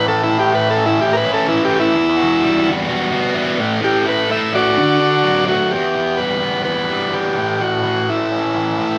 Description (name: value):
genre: rock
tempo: 127 BPM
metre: 4/4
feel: straight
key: E dorian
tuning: A4 = 440 Hz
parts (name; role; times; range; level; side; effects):
- overdriven combo organ; melody; 0.0-9.0 s; E4 to E5; -19 LUFS; equal; none
- fuzz guitar; riff; 0.0-9.0 s; E2 to F#4; -20 LUFS; equal; distortion, phaser
room: wet studio reverb, RT60 0.7 s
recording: vinyl crackle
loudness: -17 LUFS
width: mono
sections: 0.0-5.7 A section; 5.7-9.0 B section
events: transistor combo organ solo 0.0-5.7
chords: 0.0 A; 1.9 Emadd9; 3.6 A; 4.8 D; 5.7 Em; 7.4 A